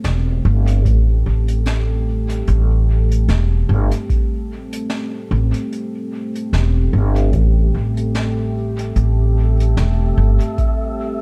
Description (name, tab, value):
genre	ambient dub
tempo	74 BPM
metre	4/4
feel	swing 56% on 16ths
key	A minor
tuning	A4 = 440 Hz
part	deep dark ambient pad	sustained chords	0.0-11.2 s	A3 to A4	-28 LUFS	equal	chorus, built-in reverb
part	upright bass	bass	0.0-10.4 s	E1 to A1	-18 LUFS	equal	none
part	jazz brush drum kit	drums	0.0-10.8 s	hi-hat, snare drum	-34 LUFS	equal	dub echo
part	electronic kick drum	drums	0.9-10.8 s	none	-22 LUFS	equal	overdrive
part	wind-like tuned noise texture	texture	9.4-11.2 s	E5	-33 LUFS	equal	built-in reverb
room	little or no reverb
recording	dark, warm production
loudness	-18 LUFS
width	mono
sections	0.0-11.2 A section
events	none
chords	0.0 Am7